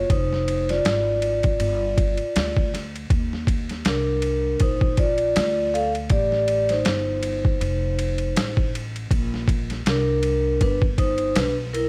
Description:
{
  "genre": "hip hop, jazz-hop",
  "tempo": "80 BPM",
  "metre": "4/4",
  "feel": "swing 58% on 16ths",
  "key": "unclear",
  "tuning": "A4 = 439 Hz",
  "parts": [
    { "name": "vibraphone with soft mallets", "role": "accompaniment", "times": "0.0-11.9 s", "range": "D4 to F5", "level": "-25 LUFS", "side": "equal", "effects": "none" },
    { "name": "upright bass", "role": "bass", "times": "0.0-11.9 s", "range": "F1 to Eb2", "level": "-29 LUFS", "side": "equal", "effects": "none" },
    { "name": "boom bap sampler-style drum kit", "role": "drums", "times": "0.1-11.9 s", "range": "hi-hat, kick drum, ride cymbal, snare drum", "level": "-26 LUFS", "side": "equal", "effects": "overdrive" }
  ],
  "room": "light reverb, small room ambience",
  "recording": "none",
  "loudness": "-22 LUFS",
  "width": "mono",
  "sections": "0.0-11.9 A section",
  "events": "vibraphone solo 0.0-11.9",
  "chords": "0.1 Fm7; 1.6 G5; 3.1 Ebsus2; 6.1 Am7b5; 7.6 F7; 9.1 Bbadd9; 10.6 G"
}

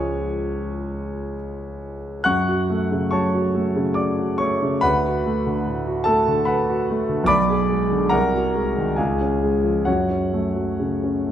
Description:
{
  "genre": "classical, romantic character piece for solo piano",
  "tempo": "71 BPM",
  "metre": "3/4",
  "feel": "uneven beats, rubato",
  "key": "F# minor",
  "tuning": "A4 = 440 Hz",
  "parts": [
    { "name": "clear concert grand piano", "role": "solo", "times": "0.0-11.3 s", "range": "B1 to F#6", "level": "-19 LUFS", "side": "equal", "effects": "none" }
  ],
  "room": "moderate concert hall reverb, RT60 1.9 s",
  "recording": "dark, warm production",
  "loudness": "-19 LUFS",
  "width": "side -10 dB against mid",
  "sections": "0.0-11.3 A section",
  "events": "none",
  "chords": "0.0 C#; 2.3 F#m; 4.8 D6; 7.3 G#dim/B; 8.1 G#7/B#; 9.0 C#; 9.9 F#m"
}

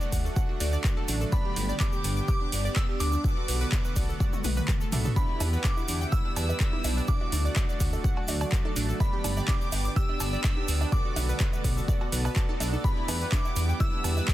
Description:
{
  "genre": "progressive house",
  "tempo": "125 BPM",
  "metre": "4/4",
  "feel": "straight",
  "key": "E minor",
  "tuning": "A4 = 440 Hz",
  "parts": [
    { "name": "evolving wavetable pad", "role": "sustained chords", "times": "0.0-14.3 s", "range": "D3 to G4", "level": "-39 LUFS", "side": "equal", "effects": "phaser, built-in reverb, sidechain pumping" },
    { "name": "analog pluck", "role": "arpeggios", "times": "0.0-14.3 s", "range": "D4 to D6", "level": "-37 LUFS", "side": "right 1 dB", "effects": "chorus, sidechain pumping, tape echo" },
    { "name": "soft supersaw", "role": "stabs", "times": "0.0-14.3 s", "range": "A3 to G5", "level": "-36 LUFS", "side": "right 3 dB", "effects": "sidechain pumping, tape echo" },
    { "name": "tube shaker", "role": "percussion", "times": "0.0-14.3 s", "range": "none", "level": "-42 LUFS", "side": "right 2 dB", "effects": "none" },
    { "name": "dark detuned saw bass", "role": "bass", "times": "0.1-14.2 s", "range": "G1 to E2", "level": "-28 LUFS", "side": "equal", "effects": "sidechain pumping" },
    { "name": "deep house drum kit", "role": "drums", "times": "0.1-14.3 s", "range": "handclaps, hi-hat, toms", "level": "-34 LUFS", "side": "equal", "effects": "overdrive, sidechain pumping on hats, sidechain pumping on toms" },
    { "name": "electronic kick drum", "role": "drums", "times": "0.1-14.3 s", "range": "none", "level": "-27 LUFS", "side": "equal", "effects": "none" },
    { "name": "glassy synth bell", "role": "melody", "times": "1.3-14.3 s", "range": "B5 to E6", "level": "-38 LUFS", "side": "right 1 dB", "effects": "chorus, sidechain pumping, tape echo" },
    { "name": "warm chamber violin section", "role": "second line", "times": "1.3-14.3 s", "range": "B5 to E6", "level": "-41 LUFS", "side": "equal", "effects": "sidechain pumping, tape echo" },
    { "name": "twinkling granular texture", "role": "texture", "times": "6.0-14.3 s", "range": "D5", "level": "-46 LUFS", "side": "right 3 dB", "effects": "none" },
    { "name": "cowbell, bongos and congas", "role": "percussion", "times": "5.4-14.3 s", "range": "none", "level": "-40 LUFS", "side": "right 3 dB", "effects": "sidechain pumping on perc" }
  ],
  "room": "little or no reverb",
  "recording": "dense, heavily limited modern master",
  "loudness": "-25 LUFS",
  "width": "side -14 dB against mid",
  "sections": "0.0-14.3 A section",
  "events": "drum fill 4.2-5.2",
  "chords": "0.0 D; 1.3 G; 3.2 Bm7; 5.2 Em7; 7.1 D; 9.0 G; 10.9 Bm7; 12.8 Em7"
}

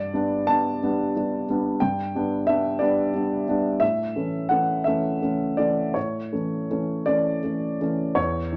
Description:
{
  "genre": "neoclassical minimalist piano",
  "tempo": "53-61 BPM (dotted quarters)",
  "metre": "6/8",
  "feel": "rubato",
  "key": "unclear",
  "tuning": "A4 = 442 Hz",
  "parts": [
    { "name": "dark concert grand piano", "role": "solo", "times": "0.0-8.6 s", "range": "E2 to A5", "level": "-24 LUFS", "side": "equal", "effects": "none" }
  ],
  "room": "moderate club reverb, RT60 0.6 s",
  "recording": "none",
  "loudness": "-24 LUFS",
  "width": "mono",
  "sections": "0.0-8.2 A section",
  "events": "none",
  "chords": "0.0 G; 3.8 A"
}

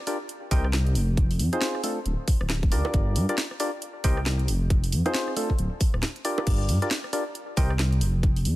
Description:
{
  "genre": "UK garage, two-step garage",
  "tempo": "136 BPM",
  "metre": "4/4",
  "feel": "swing 60% on 16ths",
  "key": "unclear",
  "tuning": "A4 = 441 Hz",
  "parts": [
    { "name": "percussive organ stab", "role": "stabs", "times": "0.1-7.7 s", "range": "A3 to G5", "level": "-30 LUFS", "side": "left 1 dB", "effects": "chorus, tape echo" },
    { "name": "garage drum kit", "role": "drums", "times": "0.1-8.6 s", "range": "bongos, crash cymbal, hi-hat, rim click, snare drum", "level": "-31 LUFS", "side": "right 1 dB", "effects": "none" },
    { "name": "dark detuned saw bass", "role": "bass", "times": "0.5-8.6 s", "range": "D1 to G2", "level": "-24 LUFS", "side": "equal", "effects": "sidechain pumping" },
    { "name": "electronic kick drum", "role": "drums", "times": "0.5-8.3 s", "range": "none", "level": "-23 LUFS", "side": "equal", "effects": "none" }
  ],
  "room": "little or no reverb",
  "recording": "none",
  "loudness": "-23 LUFS",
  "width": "side -16 dB against mid",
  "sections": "0.0-8.6 A section",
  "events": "break 6.0-6.5",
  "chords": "0.3 Cm7; 1.2 Fm7; 1.8 Dm7; 2.9 Gm7; 3.8 Cm7; 4.7 Fm7; 5.4 Dm7; 6.5 Gm7; 7.3 Cm7"
}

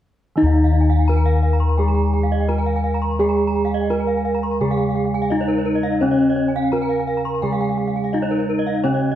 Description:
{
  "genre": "Balinese gamelan",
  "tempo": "85 BPM",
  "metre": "4/4",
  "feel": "straight",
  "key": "Eb slendro",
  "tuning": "A4 = 440 Hz",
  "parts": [
    { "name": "gamelan-type bronze metallophone", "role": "melody", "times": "0.4-9.2 s", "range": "Db4-45c to Bb4+25c", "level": "-22 LUFS", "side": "equal", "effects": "none" },
    { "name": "gamelan-type bronze metallophone", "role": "accompaniment", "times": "0.4-9.2 s", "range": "Db3-45c to Ab3-35c", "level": "-25 LUFS", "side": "right 4 dB", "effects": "none" },
    { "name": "gamelan-type bronze metallophone", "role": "arpeggios", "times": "0.4-9.1 s", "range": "Bb4+25c to Db6-45c", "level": "-27 LUFS", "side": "left 4 dB", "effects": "none" },
    { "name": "gamelan-type bossed gongs", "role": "bass", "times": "0.4-9.2 s", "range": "Eb2 to Ab4-35c", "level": "-20 LUFS", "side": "left 1 dB", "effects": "none" },
    { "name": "gamelan-type bronze metallophone", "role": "arpeggios", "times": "0.5-9.2 s", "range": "Db5-45c to Bb5+25c", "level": "-28 LUFS", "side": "right 6 dB", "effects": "none" }
  ],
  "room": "wet recital hall reverb, RT60 1.4 s",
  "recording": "none",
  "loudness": "-17 LUFS",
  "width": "side -11 dB against mid",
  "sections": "0.4-9.2 A section",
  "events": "none",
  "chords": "none"
}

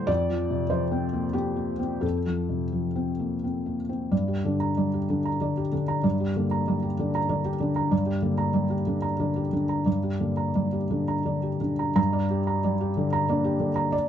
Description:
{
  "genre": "neoclassical minimalist piano",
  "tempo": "84-98 BPM",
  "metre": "3/4",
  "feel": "rubato",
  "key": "G minor",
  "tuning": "A4 = 439 Hz",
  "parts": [
    { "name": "felt-muted upright piano", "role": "solo", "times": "0.0-14.1 s", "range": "D2 to Bb5", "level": "-24 LUFS", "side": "equal", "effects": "none" }
  ],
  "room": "light reverb",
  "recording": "dark, warm production",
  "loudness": "-24 LUFS",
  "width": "side -9 dB against mid",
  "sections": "0.0-4.1 A section; 4.1-12.0 B section; 12.0-14.1 C section",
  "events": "none",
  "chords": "0.1 F; 4.1 Gm"
}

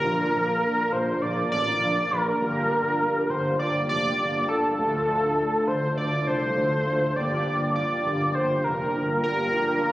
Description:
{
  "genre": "synth-pop",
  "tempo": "101 BPM",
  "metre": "4/4",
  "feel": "straight",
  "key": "G minor",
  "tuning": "A4 = 440 Hz",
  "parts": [
    { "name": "octave-doubled lead", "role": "melody", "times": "0.0-9.9 s", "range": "A4 to D5", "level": "-24 LUFS", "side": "equal", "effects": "chorus, tape echo" },
    { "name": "mellow synth brass", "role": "accompaniment", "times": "0.0-9.9 s", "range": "A3 to Bb4", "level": "-29 LUFS", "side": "equal", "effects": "chorus" },
    { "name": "smooth gliding synth bass", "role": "bass", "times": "0.0-9.9 s", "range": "F1 to D2", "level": "-30 LUFS", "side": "equal", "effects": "none" }
  ],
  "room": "moderate plate reverb, RT60 2.9 s",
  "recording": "recorded on a phone in the room, club reverb, compression",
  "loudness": "-22 LUFS",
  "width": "side -16 dB against mid",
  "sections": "0.0-9.9 A section",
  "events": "none",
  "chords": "0.0 Bb; 2.4 Gm7; 4.8 Dm; 7.2 Gm7"
}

